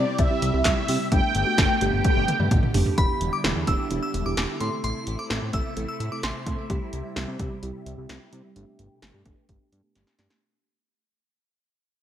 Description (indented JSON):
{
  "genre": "synth-pop",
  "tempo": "129 BPM",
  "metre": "4/4",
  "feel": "straight",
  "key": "G major",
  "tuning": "A4 = 439 Hz",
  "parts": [
    { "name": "mellow synth brass", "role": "melody", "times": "0.0-2.5 s", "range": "D5 to G5", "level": "-25 LUFS", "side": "right 1 dB", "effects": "chorus, phaser, digital delay" },
    { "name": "muted felt-like synth keys", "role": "accompaniment", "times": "0.0-10.4 s", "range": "G3 to A5", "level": "-31 LUFS", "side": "right 2 dB", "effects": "chorus, low-pass filter" },
    { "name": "phased string machine", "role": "sustained chords", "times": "0.0-10.4 s", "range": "B2 to G4", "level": "-33 LUFS", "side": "left 1 dB", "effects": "ensemble chorus, phaser, low-pass filter" },
    { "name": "fat analog bass", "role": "bass", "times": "0.0-10.3 s", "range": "E1 to C3", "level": "-28 LUFS", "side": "equal", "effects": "none" },
    { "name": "punchy analog drum machine", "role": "drums", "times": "0.2-10.4 s", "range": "handclaps, hi-hat, kick drum, snare drum, toms", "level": "-24 LUFS", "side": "equal", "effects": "gated reverb" },
    { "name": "glassy synth bell", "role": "second line", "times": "3.0-6.6 s", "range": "B5 to E6", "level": "-31 LUFS", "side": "left 1 dB", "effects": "chorus, phaser, digital delay" }
  ],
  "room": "moderate plate reverb, RT60 1.9 s",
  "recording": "bright 1980s-style digital production",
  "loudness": "-22 LUFS",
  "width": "side -10 dB against mid",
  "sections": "0.0-3.0 A section; 3.0-10.4 B section",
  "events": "drum fill 2.0-3.0, 10.0-10.4; fade-out 3.0-10.4; filter sweep 3.0-10.4; synth keys fill 9.5-10.4",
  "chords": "0.0 C; 1.1 Gadd9; 3.0 Em7; 4.6 Am; 6.7 C; 8.6 Gadd9"
}